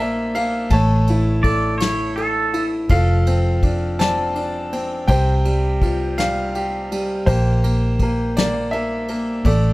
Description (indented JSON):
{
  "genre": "acoustic folk-pop ballad",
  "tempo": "55 BPM (dotted quarters)",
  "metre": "6/8",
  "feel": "straight",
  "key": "unclear",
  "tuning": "A4 = 439 Hz",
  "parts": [
    { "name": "bright upright piano", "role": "melody", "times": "0.0-9.7 s", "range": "C3 to A5", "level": "-21 LUFS", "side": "left 1 dB", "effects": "none" },
    { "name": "vintage muted fingered electric bass", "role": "bass", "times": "0.0-9.7 s", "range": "F1 to C2", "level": "-20 LUFS", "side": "equal", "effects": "none" },
    { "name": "soft brush drum kit", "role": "drums", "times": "0.3-9.6 s", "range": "kick drum, ride cymbal, snare drum", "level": "-24 LUFS", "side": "left 1 dB", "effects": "none" },
    { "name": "pedal steel guitar", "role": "second line", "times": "1.4-2.7 s", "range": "A4 to D5", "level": "-21 LUFS", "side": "right 2 dB", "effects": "none" }
  ],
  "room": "light reverb",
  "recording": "dark, warm production",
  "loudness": "-17 LUFS",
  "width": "side -19 dB against mid",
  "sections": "0.0-9.7 A section",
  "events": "none",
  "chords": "0.0 Bb5; 0.7 A; 2.9 F6; 5.1 Csus4; 7.3 Gm/Bb"
}